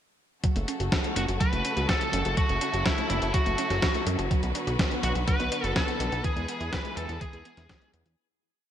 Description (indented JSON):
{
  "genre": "italo disco",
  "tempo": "124 BPM",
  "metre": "4/4",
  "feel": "straight",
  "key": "F# minor",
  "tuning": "A4 = 438 Hz",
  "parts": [
    { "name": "clear studio string section", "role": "sustained chords", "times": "0.4-8.2 s", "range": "C#3 to B4", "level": "-34 LUFS", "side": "left 1 dB", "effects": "shimmer reverb" },
    { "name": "warbly dusty pluck", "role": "arpeggios", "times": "0.4-8.1 s", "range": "E3 to F#4", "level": "-35 LUFS", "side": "right 4 dB", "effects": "chorus, ping-pong delay, shimmer reverb" },
    { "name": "clean 12-bit digital drum machine", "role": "drums", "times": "0.4-8.2 s", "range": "hi-hat, snare drum", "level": "-31 LUFS", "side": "left 1 dB", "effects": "gated reverb" },
    { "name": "electronic kick drum", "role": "drums", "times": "0.4-7.8 s", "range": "none", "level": "-28 LUFS", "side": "equal", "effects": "none" },
    { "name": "fat analog bass", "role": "bass", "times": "0.6-8.2 s", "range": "F#1 to F#2", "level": "-30 LUFS", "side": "equal", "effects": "none" },
    { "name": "biting lead guitar", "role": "melody", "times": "1.2-7.9 s", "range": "E4 to B4", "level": "-31 LUFS", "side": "equal", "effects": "overdrive, ping-pong delay, shimmer reverb" }
  ],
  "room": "light reverb",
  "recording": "bright 1980s-style digital production",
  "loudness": "-24 LUFS",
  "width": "side -10 dB against mid",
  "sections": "0.4-8.2 verse",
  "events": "fade-out 5.6-8.2",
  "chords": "0.4 F#m; 4.3 Bm; 6.2 E"
}